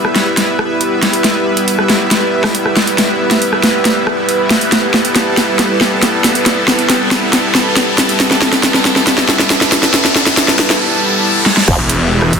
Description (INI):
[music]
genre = heavy wobble dubstep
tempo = 138 BPM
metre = 4/4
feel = half-time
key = E minor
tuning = A4 = 440 Hz
[part]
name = supersaw pad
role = sustained chords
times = 0.0-12.4 s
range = G3 to A5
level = -17 LUFS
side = left 1 dB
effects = sidechain pumping
[part]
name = big-room dance drum kit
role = drums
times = 0.0-12.4 s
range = crash cymbal, hi-hat, rim click, snare drum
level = -12 LUFS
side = equal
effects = none
[part]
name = riser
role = sound effects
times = 0.8-11.7 s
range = none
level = -20 LUFS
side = equal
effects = none
[part]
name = warbly tape-like pad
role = texture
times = 0.0-12.4 s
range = E4 to G5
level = -20 LUFS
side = right 2 dB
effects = chorus, built-in reverb, sidechain pumping
[part]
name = formant-sweep wobble bass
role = bass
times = 11.7-11.8 s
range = E1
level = -12 LUFS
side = equal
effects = chorus, overdrive
[part]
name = electronic kick drum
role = drums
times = 11.7-12.4 s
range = none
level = -18 LUFS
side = equal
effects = none
[part]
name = snarling distorted saw bass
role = bass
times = 11.8-12.4 s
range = E1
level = -12 LUFS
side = equal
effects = overdrive
[sound]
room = moderate lush hall reverb, RT60 1.7 s, digital ambience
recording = dense, heavily limited modern master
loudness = -10 LUFS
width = side -6 dB against mid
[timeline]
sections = 0.0-11.7 A section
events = build-up 0.0-11.7; drum fill 0.0-10.8, 11.5; riser 0.8-11.7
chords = 0.0 Em